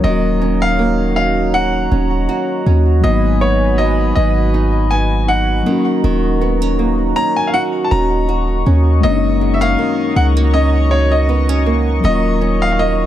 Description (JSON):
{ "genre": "R&B", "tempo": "80 BPM", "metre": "4/4", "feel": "swing 54% on 16ths", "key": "unclear", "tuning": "A4 = 440 Hz", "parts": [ { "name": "clear grand piano", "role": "melody", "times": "0.0-13.1 s", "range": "C#5 to A#5", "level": "-19 LUFS", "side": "equal", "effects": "digital delay" }, { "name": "mellow tine electric piano", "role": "accompaniment", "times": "0.0-13.1 s", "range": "F#3 to F#4", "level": "-20 LUFS", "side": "left 4 dB", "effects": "phaser" }, { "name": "chorused pulse-width pad", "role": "sustained chords", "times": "0.0-13.1 s", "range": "F#3 to C#6", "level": "-23 LUFS", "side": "right 1 dB", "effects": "none" }, { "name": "nylon-string guitar", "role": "arpeggios", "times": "0.0-13.1 s", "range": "F#2 to F#4", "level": "-21 LUFS", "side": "right 6 dB", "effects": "none" }, { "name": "warm 808-style bass", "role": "bass", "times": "0.0-13.1 s", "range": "D#1 to D#2", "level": "-16 LUFS", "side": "equal", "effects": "none" } ], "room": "studio reverb", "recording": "none", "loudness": "-12 LUFS", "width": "side -12 dB against mid", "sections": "0.0-13.1 A section", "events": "none", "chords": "0.0 D#m7; 3.0 G#m7; 5.7 D#m7; 9.0 F#6; 12.0 D#m7", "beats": "| 0.04 0.79 1.54 2.29 | 3.04 3.79 4.54 5.29 | 6.04 6.79 7.54 8.29 | 9.04 9.79 10.54 11.29 | 12.04 12.79" }